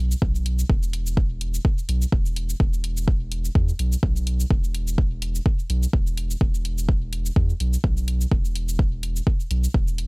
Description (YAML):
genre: dub techno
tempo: 126 BPM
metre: 4/4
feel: swing 56% on 16ths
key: unclear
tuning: A4 = 440 Hz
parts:
  - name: soft dub sub bass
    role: bass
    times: 0.0-10.1 s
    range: E1 to E2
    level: -24 LUFS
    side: equal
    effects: sidechain pumping
  - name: electronic shaker and hi-hat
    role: drums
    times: 0.1-10.1 s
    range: none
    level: -34 LUFS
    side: left 1 dB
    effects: none
  - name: electronic kick drum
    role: drums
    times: 0.2-9.9 s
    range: none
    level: -20 LUFS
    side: equal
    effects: none
room: little or no reverb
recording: dry, gritty hardware recording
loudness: -20 LUFS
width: side -36 dB against mid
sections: 0.0-10.1 A section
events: none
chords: none